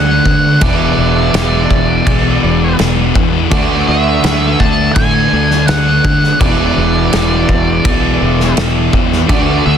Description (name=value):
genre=rock, shoegaze and dream pop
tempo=83 BPM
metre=4/4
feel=straight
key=unclear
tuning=A4 = 440 Hz
part: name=octave-fuzz lead guitar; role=melody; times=0.0-9.8 s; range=D5 to A5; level=-18 LUFS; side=equal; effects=distortion, digital delay
part: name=overdriven semi-hollow guitar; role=riff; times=0.0-9.8 s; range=E2 to F#4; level=-17 LUFS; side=right 11 dB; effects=reverse reverb
part: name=thick fuzz guitar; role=riff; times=0.0-9.8 s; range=E2 to D4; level=-16 LUFS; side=left 11 dB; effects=distortion, lush chorus
part: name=fingered electric bass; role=bass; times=0.0-9.8 s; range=E1 to D3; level=-17 LUFS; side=equal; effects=none
part: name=loose indie drum kit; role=drums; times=0.3-9.5 s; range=crash cymbal, kick drum, snare drum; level=-15 LUFS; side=equal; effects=none
room=little or no reverb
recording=dense, heavily limited modern master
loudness=-9 LUFS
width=side -8 dB against mid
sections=0.0-9.8 A section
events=none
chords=0.0 D; 0.6 E7; 3.5 Dadd9; 6.4 E7